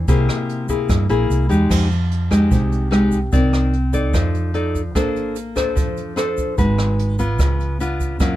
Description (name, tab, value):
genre	bossa nova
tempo	148 BPM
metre	4/4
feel	straight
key	unclear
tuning	A4 = 436 Hz
part	nylon-string guitar	accompaniment	0.0-8.4 s	C3 to D5	-20 LUFS	left 1 dB	none
part	hollow-body short-scale fingered electric bass	bass	0.0-8.4 s	Ab1 to G2	-20 LUFS	right 1 dB	none
part	jazz brush drum kit	drums	0.1-8.3 s	crash cymbal, hi-hat, kick drum, rim click	-23 LUFS	right 1 dB	none
part	egg shaker	percussion	0.1-8.4 s	none	-41 LUFS	right 7 dB	none
room	little or no reverb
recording	dark, warm production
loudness	-16 LUFS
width	side -14 dB against mid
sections	0.0-1.7 A section; 1.7-8.4 A section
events	none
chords	0.1 C7b13; 1.7 Fm9; 3.3 Cm9; 4.1 F6; 5.0 Bbmaj9; 6.6 Abm7; 7.4 Db7b9